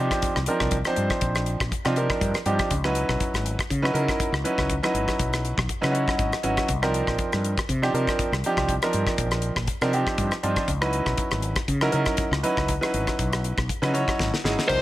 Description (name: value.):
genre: electric jazz fusion.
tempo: 120 BPM.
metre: 4/4.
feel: swing 54% on 16ths.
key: unclear.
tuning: A4 = 440 Hz.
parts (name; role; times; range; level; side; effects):
bright concert grand piano; accompaniment; 0.0-14.8 s; F3 to Gb5; -25 LUFS; right 1 dB; none.
mellow fretless electric bass; bass; 0.0-14.8 s; Ab1 to Db3; -27 LUFS; equal; none.
damped 70s drum kit; drums; 0.1-14.8 s; crash cymbal, hi-hat, kick drum, rim click, snare drum; -27 LUFS; left 1 dB; none.
bluesy overdriven lead guitar; melody; 14.7-14.8 s; C5; -20 LUFS; left 1 dB; distortion.
room: light reverb, studio ambience.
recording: none.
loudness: -22 LUFS.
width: side -15 dB against mid.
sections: 0.0-14.7 A section.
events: grand piano fill 5.7-6.7; drum fill 14.2-14.7.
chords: 0.0 Cm11; 2.7 Dbm11; 6.7 Cm11; 10.7 Dbm11.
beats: 0.23 | 0.72 1.22 1.72 2.21 | 2.71 3.21 3.71 4.20 | 4.70 5.20 5.70 6.19 | 6.69 7.19 7.69 8.19 | 8.69 9.19 9.69 10.18 | 10.68 11.18 11.68 12.18 | 12.68 13.18 13.69 14.19 | 14.69.